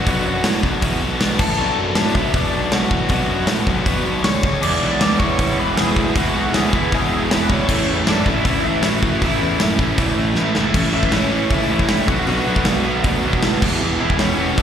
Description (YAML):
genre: punk rock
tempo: 157 BPM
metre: 4/4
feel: straight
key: unclear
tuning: A4 = 440 Hz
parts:
  - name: lead guitar through a small cranked amp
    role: melody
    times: 0.0-14.6 s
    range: C#4 to D6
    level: -24 LUFS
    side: left 2 dB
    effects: overdrive, slapback echo, tape echo
  - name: high-gain distorted guitar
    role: riff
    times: 0.0-14.6 s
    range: E2 to B3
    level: -25 LUFS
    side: right 2 dB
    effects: distortion, slapback echo
  - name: sludgy distorted guitar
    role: riff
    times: 0.0-14.6 s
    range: A2 to A4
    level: -22 LUFS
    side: left 6 dB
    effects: overdrive, slapback echo
  - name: fuzz picked electric bass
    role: bass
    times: 0.0-14.6 s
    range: E1 to A2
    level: -24 LUFS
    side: right 1 dB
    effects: overdrive
  - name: big rock drum kit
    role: drums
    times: 0.1-14.6 s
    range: crash cymbal, hi-hat, kick drum, snare drum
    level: -21 LUFS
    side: equal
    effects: none
  - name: crunchy overdriven guitar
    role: riff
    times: 4.6-14.6 s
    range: E2 to B3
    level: -23 LUFS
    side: right 12 dB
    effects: slapback echo
room: small room ambience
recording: live gig heard through the venue's PA, recital hall reverb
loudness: -15 LUFS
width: side -8 dB against mid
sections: 0.0-10.7 A section; 10.7-14.6 B section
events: drum fill 10.4-10.7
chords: 0.0 Bm; 1.4 A5; 1.6 Bm; 4.3 D5; 4.4 C#5; 4.6 E; 7.7 A; 12.1 Bm; 13.6 Em